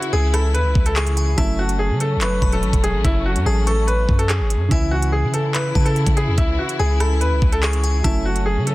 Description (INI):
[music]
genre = hip hop, drill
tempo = 144 BPM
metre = 4/4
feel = half-time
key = C# minor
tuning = A4 = 442 Hz
[part]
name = bright upright piano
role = melody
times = 0.0-8.7 s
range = E4 to B4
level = -23 LUFS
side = equal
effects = low-pass filter
[part]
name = felt-muted upright piano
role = accompaniment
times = 0.0-8.7 s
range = C#3 to E4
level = -30 LUFS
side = right 3 dB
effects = low-pass filter
[part]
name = dark symphonic string section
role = sustained chords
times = 0.0-8.7 s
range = C#3 to E4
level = -28 LUFS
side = left 2 dB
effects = none
[part]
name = drill drum kit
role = drums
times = 0.0-8.7 s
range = handclaps, hi-hat, kick drum, rim click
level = -20 LUFS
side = equal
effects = none
[part]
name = glassy synth bell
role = second line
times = 0.1-8.7 s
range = G#5 to C#6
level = -31 LUFS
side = left 3 dB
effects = chorus, tape echo
[part]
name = long sustained 808-style bass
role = bass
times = 0.1-8.7 s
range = E1 to C#3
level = -20 LUFS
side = equal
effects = none
[sound]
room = small room reverb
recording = dense, heavily limited modern master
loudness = -16 LUFS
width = side -18 dB against mid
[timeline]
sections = 0.0-8.7 A section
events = none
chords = 0.0 C#m; 1.4 F#m; 4.7 C#m; 8.0 F#m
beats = 0.13 0.55 0.96 | 1.38 1.79 2.21 2.63 | 3.04 3.46 3.88 4.29 | 4.71 5.13 5.54 5.96 | 6.38 6.79 7.21 7.63 | 8.04 8.46